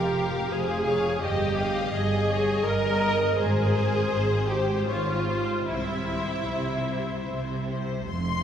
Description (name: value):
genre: classical, slow romantic movement for string orchestra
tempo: 74-86 BPM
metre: 3/4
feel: rubato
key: unclear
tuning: A4 = 440 Hz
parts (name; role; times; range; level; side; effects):
- clear symphonic violin section; melody; 0.0-8.4 s; C5 to C6; -36 LUFS; left 7 dB; none
- clear studio violin section; second line; 0.0-7.7 s; Bb4 to F5; -33 LUFS; left 3 dB; none
- rich studio viola section; accompaniment; 0.0-7.7 s; E4 to Bb4; -27 LUFS; right 1 dB; none
- clear symphonic cello section; bass; 0.0-8.4 s; F2 to C3; -31 LUFS; right 1 dB; none
- clear symphonic double bass section; bass; 0.0-8.4 s; F1 to C2; -30 LUFS; right 2 dB; none
room: wet cathedral reverb, RT60 5.3 s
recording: recorded in a church or concert hall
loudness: -23 LUFS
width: side -8 dB against mid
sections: 0.0-8.1 A section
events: none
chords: 0.0 Fm; 1.2 Eb/G; 3.4 Ab; 5.7 C